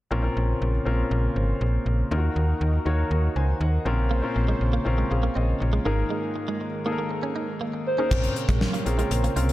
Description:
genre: 1980s-style pop.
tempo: 120 BPM.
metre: 4/4.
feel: straight.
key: Bb minor.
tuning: A4 = 439 Hz.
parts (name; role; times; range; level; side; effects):
clear concert grand piano; accompaniment; 0.1-9.5 s; Ab2 to Bb5; -29 LUFS; left 2 dB; none.
brassy analog pad; sustained chords; 0.1-9.5 s; Db3 to C5; -32 LUFS; right 1 dB; chorus.
slap-like FM bass; bass; 0.1-9.5 s; Ab1 to Eb2; -23 LUFS; equal; none.
direct-recorded clean electric guitar; riff; 4.1-9.5 s; Ab3 to Eb4; -33 LUFS; right 5 dB; analog chorus, digital delay.
hollow clarinet-like synth lead; melody; 7.9-9.5 s; Ab4 to C5; -28 LUFS; right 1 dB; chorus, phaser.
gated 80s drum kit; drums; 8.1-9.5 s; crash cymbal, hi-hat, kick drum, snare drum; -26 LUFS; equal; gated reverb.
room: light reverb, studio reverb.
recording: none.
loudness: -22 LUFS.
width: side -16 dB against mid.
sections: 0.1-8.1 A section; 8.1-9.5 B section.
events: break 6.1-8.1.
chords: 0.1 Bbmadd9; 2.1 Ebm; 3.9 Bbmadd9; 5.9 Absus2; 8.1 Bbmadd9.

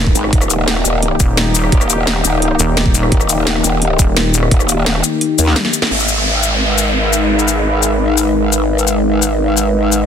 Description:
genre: dark technical drum and bass.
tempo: 172 BPM.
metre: 4/4.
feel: straight.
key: G# harmonic minor.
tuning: A4 = 441 Hz.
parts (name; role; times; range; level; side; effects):
sweeping resonant pad; sustained chords; 0.0-10.1 s; D#3 to B4; -17 LUFS; left 1 dB; chorus, sidechain pumping.
pulsing pluck wobble bass; bass; 0.0-4.5 s; D#1 to G#1; -16 LUFS; equal; chorus.
electronic kick drum; drums; 0.1-4.6 s; none; -13 LUFS; equal; none.
growl bass; bass; 0.2-10.1 s; D#1 to D#2; -16 LUFS; equal; chorus, tube saturation, sidechain pumping.
drum and bass drum kit; drums; 0.2-10.0 s; hi-hat, rim click, shaker, snare drum, toms; -17 LUFS; left 2 dB; none.
downlifter; sound effects; 5.9-8.7 s; none; -19 LUFS; equal; none.
room: moderate lush hall reverb, RT60 1.9 s.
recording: dense, heavily limited modern master.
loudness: -11 LUFS.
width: side -8 dB against mid.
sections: 0.0-5.9 A section; 5.9-10.1 B section.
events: drum fill 5.6-5.9; band accent 5.8.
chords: 0.3 D#; 5.9 G#m.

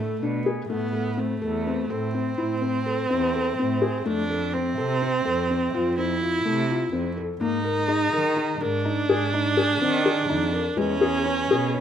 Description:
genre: contemporary instrumental, chamber music in an uneven meter.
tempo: 250 BPM (eighths).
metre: 7/8.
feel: straight.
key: unclear.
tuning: A4 = 438 Hz.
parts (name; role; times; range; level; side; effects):
clear viola; second line; 0.0-11.8 s; A3 to E4; -25 LUFS; right 2 dB; none.
felt-muted upright piano; arpeggios; 0.0-11.8 s; G#3 to A#4; -26 LUFS; left 4 dB; none.
muted cello; bass; 0.0-11.8 s; E2 to D#3; -29 LUFS; right 4 dB; none.
celesta; texture; 7.9-11.8 s; G#4 to B4; -36 LUFS; left 10 dB; none.
room: light reverb.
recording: minimal, uncompressed stereo recording.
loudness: -22 LUFS.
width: side -9 dB against mid.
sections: 0.7-11.8 A section.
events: none.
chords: 0.0 D5; 0.7 Am; 4.1 F; 7.4 G#sus2; 10.8 E6.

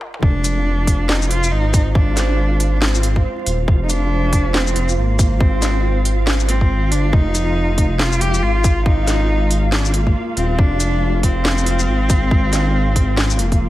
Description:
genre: deep dubstep.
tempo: 139 BPM.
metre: 4/4.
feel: swing 60% on 16ths, half-time.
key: F dorian.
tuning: A4 = 436 Hz.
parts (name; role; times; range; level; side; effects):
deep dark ambient pad; sustained chords; 0.0-13.7 s; Ab3 to F5; -27 LUFS; equal; chorus, built-in reverb.
garage drum kit; drums; 0.0-13.6 s; hi-hat, shaker, snare drum, toms; -22 LUFS; equal; high-pass filter on hats, high-pass filter on perc, high-pass filter on snare, high-pass filter on toms, high-pass filter on room.
dark cello; melody; 0.2-13.7 s; Bb3 to G4; -23 LUFS; equal; dub echo.
dark detuned saw bass; bass; 0.2-13.7 s; Eb1 to Ab1; -18 LUFS; equal; none.
electronic kick drum; drums; 0.2-13.6 s; none; -16 LUFS; equal; none.
flickering grainy texture; texture; 0.6-13.7 s; F4; -29 LUFS; right 2 dB; built-in reverb.
room: digital ambience.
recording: vinyl crackle, high-pass filter, faint mains hum.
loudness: -14 LUFS.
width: side -15 dB against mid.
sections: 0.2-13.7 A section.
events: break 0.0; drum fill 0.0; drop 0.2-13.7.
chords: 0.2 Fm.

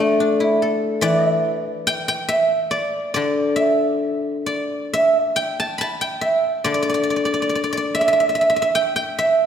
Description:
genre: chinese traditional, Chinese solo plucked strings.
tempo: 70 BPM.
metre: 2/4.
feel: rubato.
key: D zhi mode.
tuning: A4 = 438 Hz.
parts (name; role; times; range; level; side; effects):
guzheng; solo; 0.0-9.5 s; D3 to B5; -17 LUFS; equal; none.
room: wet concert hall reverb, RT60 2.3 s.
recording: recorded in a church or concert hall.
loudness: -17 LUFS.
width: side -8 dB against mid.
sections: 0.0-9.5 A section.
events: none.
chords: none.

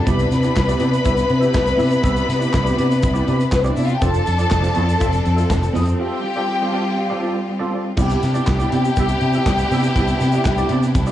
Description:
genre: disco.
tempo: 121 BPM.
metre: 4/4.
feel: straight.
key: C major.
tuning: A4 = 440 Hz.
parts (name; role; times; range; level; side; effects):
warm studio string section; second line; 0.0-11.1 s; B3 to B5; -22 LUFS; left 3 dB; slapback echo.
bright studio string section; sustained chords; 0.0-11.1 s; C3 to A4; -24 LUFS; left 1 dB; none.
clean electric guitar; accompaniment; 0.1-11.1 s; B3 to E5; -24 LUFS; right 4 dB; ensemble chorus.
vintage muted fingered electric bass; bass; 0.1-11.1 s; F1 to C3; -19 LUFS; equal; none.
modern studio drum kit; drums; 0.1-11.1 s; crash cymbal, handclaps, hi-hat, kick drum, snare drum; -23 LUFS; equal; none.
egg shaker; percussion; 0.1-11.1 s; none; -43 LUFS; left 2 dB; none.
room: light reverb.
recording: live gig heard through the venue's PA, club reverb, nothing above 10.5 kHz.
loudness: -16 LUFS.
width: side -12 dB against mid.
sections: 0.0-8.0 A section; 8.0-11.1 A section.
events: break 6.0-8.0.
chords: 0.1 Cmaj9; 4.0 F6; 6.0 G9sus4; 8.0 Cmaj9.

